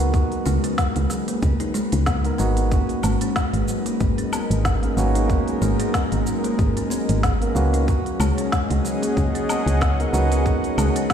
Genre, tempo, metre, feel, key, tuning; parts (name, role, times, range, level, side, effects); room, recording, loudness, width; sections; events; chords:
organic downtempo; 93 BPM; 4/4; swing 56% on 16ths; G# minor; A4 = 440 Hz
tine electric piano; accompaniment; 0.0-11.1 s; A#3 to A#4; -27 LUFS; right 3 dB; sidechain pumping, ping-pong delay, shimmer reverb
kalimba; arpeggios; 0.0-11.0 s; F#3 to D#4; -26 LUFS; left 2 dB; ping-pong delay, shimmer reverb
woody FM bass; bass; 0.0-10.9 s; G#1 to C#2; -21 LUFS; equal; tube saturation
organic electronic drum kit; drums; 0.0-11.1 s; cabasa, hi-hat, snare drum, woodblock; -29 LUFS; equal; small room ambience
electronic kick drum; drums; 0.1-11.1 s; -22 LUFS; equal; small room ambience
warm analog pad; sustained chords; 2.7-11.1 s; G#3 to F#5; -28 LUFS; equal; chorus, sidechain pumping, shimmer reverb
light reverb; played on a big sound system in a bare room, stone room reverb; -19 LUFS; side -8 dB against mid
0.0-11.1 A section
0.0 G#m11